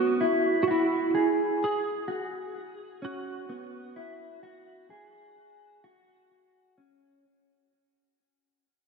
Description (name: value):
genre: dream pop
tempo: 64 BPM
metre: 4/4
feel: straight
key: E major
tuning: A4 = 440 Hz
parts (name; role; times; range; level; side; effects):
- clean lap steel guitar; melody; 0.0-6.3 s; E4 to G#4; -28 LUFS; right 4 dB; ensemble chorus, ping-pong delay
- mellow electric guitar; arpeggios; 0.0-7.2 s; B3 to G#4; -30 LUFS; left 2 dB; wide subtle chorus, ping-pong delay
room: wet lush hall reverb, RT60 2.7 s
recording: dreamy mix soaked in reverb, nothing above 11.0 kHz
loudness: -25 LUFS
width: side -5 dB against mid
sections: 0.0-7.2 A section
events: fade-out 0.0-7.2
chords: 0.0 E69/B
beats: 0.67 1.61 2.55 | 3.49 4.42 5.36 6.30